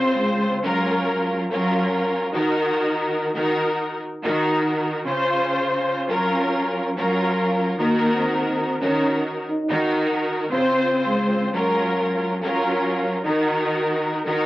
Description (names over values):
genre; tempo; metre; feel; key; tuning
hip hop; 88 BPM; 4/4; swing 60% on 16ths; unclear; A4 = 440 Hz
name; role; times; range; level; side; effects
vibraphone with soft mallets; melody; 0.0-0.5, 7.8-11.4 s; Ab3 to Eb5; -23 LUFS; equal; high-pass filter, low-pass filter, analog delay
warm symphonic string section; accompaniment; 0.0-14.5 s; Db3 to C5; -20 LUFS; equal; cassette tape, high-pass filter, low-pass filter
room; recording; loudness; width
light reverb; dry, gritty hardware recording, nothing above 10.6 kHz; -19 LUFS; side -16 dB against mid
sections
0.0-14.5 A section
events
none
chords
0.0 Dbmaj7; 0.6 Gbmaj7; 2.3 Ebm; 5.1 Dbmaj7; 6.1 Gbmaj7; 7.8 Ebm; 10.5 Dbmaj7; 11.5 Gbmaj7; 13.2 Ebm